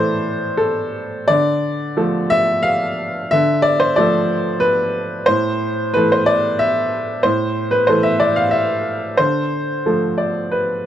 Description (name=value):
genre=neoclassical minimalist piano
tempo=90 BPM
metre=3/4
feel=rubato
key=A minor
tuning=A4 = 439 Hz
part: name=bright upright piano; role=solo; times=0.0-10.9 s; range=A2 to F5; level=-15 LUFS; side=equal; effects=none
room=little or no reverb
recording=dry, close 1970s-style studio recording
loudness=-15 LUFS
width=side -11 dB against mid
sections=0.0-10.9 A section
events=none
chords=0.0 Am; 1.3 Dm; 5.3 Am; 9.2 Dm